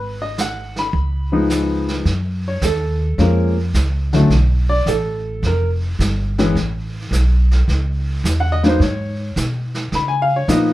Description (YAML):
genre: jazz piano trio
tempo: 107 BPM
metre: 4/4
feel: swing 68% on 8ths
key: unclear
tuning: A4 = 438 Hz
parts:
  - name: warm upright piano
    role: melody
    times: 0.0-10.7 s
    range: D3 to B5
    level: -18 LUFS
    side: left 1 dB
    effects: none
  - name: upright bass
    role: bass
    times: 0.0-10.7 s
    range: F1 to C#3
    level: -18 LUFS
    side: equal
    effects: none
  - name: vintage brush drum kit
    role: drums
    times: 0.4-10.7 s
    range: brushed snare drum, hi-hat, kick drum, snare drum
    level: -26 LUFS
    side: right 2 dB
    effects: none
room: moderate studio reverb, RT60 0.6 s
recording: heard from further back in the room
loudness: -16 LUFS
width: side -16 dB against mid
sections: 0.0-2.1 A section; 2.1-10.7 B section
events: upright piano solo 2.1-10.7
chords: 0.0 G#m7; 0.9 C#7; 2.1 F#maj7; 4.3 Asus2; 5.4 Fsus2; 6.6 Aadd9; 8.8 G#m; 9.9 C#13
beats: 0.37 0.93 1.49 | 2.06 2.62 3.18 3.74 | 4.31 4.87 5.43 6.00 | 6.56 7.12 7.68 8.25 | 8.81 9.37 9.94 10.50